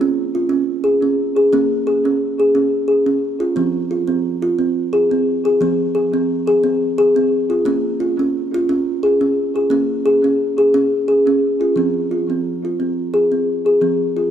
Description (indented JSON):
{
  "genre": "world meditative, meditative tuned percussion",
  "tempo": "88 BPM",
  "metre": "3/4",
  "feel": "swing 54% on 16ths",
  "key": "F minor",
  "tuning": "A4 = 439 Hz",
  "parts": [
    { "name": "kalimba", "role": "solo", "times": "0.0-14.3 s", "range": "F3 to Ab4", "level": "-15 LUFS", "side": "equal", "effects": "analog delay" }
  ],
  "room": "wet plate reverb, RT60 3.8 s",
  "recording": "echo-heavy mix",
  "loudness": "-15 LUFS",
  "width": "side -9 dB against mid",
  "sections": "0.0-11.7 A section; 11.7-14.3 B section",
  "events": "none",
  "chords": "0.0 Bbm; 3.6 Fm; 7.7 Bbm; 11.7 Fm"
}